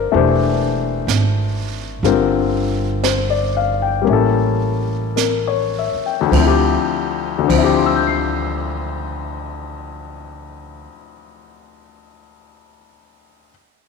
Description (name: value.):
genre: jazz ballad.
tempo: 50-64 BPM.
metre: 4/4.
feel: swing 67% on 8ths.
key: D minor.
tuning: A4 = 440 Hz.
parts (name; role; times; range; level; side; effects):
warm baby grand piano; accompaniment; 0.0-13.5 s; D2 to C7; -18 LUFS; left 9 dB; none.
upright bass; bass; 0.0-10.9 s; E1 to D2; -21 LUFS; right 3 dB; none.
jazz brush drum kit; drums; 0.1-7.9 s; brushed snare drum, hi-hat, kick drum, ride cymbal, snare drum; -26 LUFS; right 13 dB; none.
room: moderate echo chamber reverb, RT60 2.2 s.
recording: 1960s-style stereo with parts hard left and right.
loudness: -15 LUFS.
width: side -4 dB against mid.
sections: 0.0-6.3 A section; 6.3-11.0 B section.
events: slowing down 0.0-6.3.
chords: 0.1 C69/E; 2.0 Gm7; 4.1 A7b9; 6.3 Dm11.